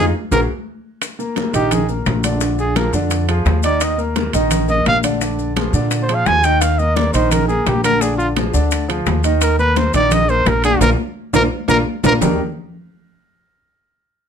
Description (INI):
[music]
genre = Afro-Cuban jazz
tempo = 172 BPM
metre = 4/4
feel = straight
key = unclear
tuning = A4 = 439 Hz
[part]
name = breathy trumpet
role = melody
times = 0.0-12.1 s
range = F4 to Ab5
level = -17 LUFS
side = right 1 dB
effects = none
[part]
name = warm concert grand piano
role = accompaniment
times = 0.0-12.4 s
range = D3 to Eb5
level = -21 LUFS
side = equal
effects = none
[part]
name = upright bass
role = bass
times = 0.0-12.4 s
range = Bb1 to Bb2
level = -19 LUFS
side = equal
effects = none
[part]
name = bongos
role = percussion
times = 0.3-12.3 s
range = none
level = -25 LUFS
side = left 8 dB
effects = none
[part]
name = congas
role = percussion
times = 0.3-12.3 s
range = none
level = -24 LUFS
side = left 2 dB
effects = none
[part]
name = maracas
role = percussion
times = 0.3-12.3 s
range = none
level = -30 LUFS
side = left 6 dB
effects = none
[part]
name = timbales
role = percussion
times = 0.3-12.3 s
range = none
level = -25 LUFS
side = right 11 dB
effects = none
[sound]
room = light reverb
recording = close, detailed microphones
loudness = -14 LUFS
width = side -7 dB against mid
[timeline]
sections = 0.0-1.0 A section; 1.0-12.2 B section; 12.2-13.6 C section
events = drum fill 0.0-1.0, 10.8-12.2; band accent 0.0-1.0, 10.8-12.2; trumpet solo 1.0-12.2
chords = 0.3 Gbadd9/Bb; 1.0 Eb5; 2.4 Bb7; 3.8 Eb5; 5.2 Bb7; 6.6 Eb5; 8.0 Bb7; 9.4 Eb5; 10.8 Bb; 12.2 Ebmaj7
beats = 0.32 0.67 | 1.02 1.37 1.72 2.07 | 2.42 2.77 3.12 3.47 | 3.82 4.17 4.52 4.87 | 5.22 5.57 5.92 6.27 | 6.62 6.97 7.32 7.67 | 8.02 8.37 8.72 9.07 | 9.42 9.77 10.12 10.47 | 10.82 11.17 11.52 11.87 | 12.22